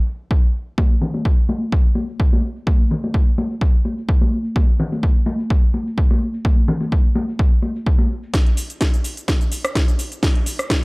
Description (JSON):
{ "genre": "house", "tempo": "127 BPM", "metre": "4/4", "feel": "swing 54% on 16ths", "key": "none", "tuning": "none", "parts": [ { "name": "electronic kick drum", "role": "drums", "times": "0.3-10.8 s", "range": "none", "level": "-16 LUFS", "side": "equal", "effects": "none" }, { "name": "tube shaker and congas", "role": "percussion", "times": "0.8-8.3 s", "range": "none", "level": "-23 LUFS", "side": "left 1 dB", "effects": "sidechain pumping on perc, low-pass filter on perc" }, { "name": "house drum kit", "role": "drums", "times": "8.3-10.8 s", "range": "hi-hat, rim click, shaker, snare drum", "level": "-23 LUFS", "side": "equal", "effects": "overdrive, low-pass filter on snare, sidechain pumping on hats, low-pass filter on hats, sidechain pumping on perc, low-pass filter on perc, low-pass filter on room" } ], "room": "digital ambience", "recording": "dry, gritty hardware recording", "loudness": "-16 LUFS", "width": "side -29 dB against mid", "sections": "0.0-8.3 A section; 8.3-10.8 B section", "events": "filter sweep on drum 0.0-8.3; build-up 8.3-10.8; drum fill 8.3-10.8", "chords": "none", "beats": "0.31 | 0.78 1.25 1.72 2.20 | 2.67 3.14 3.61 4.09 | 4.56 5.03 5.50 5.98 | 6.45 6.92 7.39 7.87 | 8.34 8.81 9.28 9.76 | 10.23 10.70" }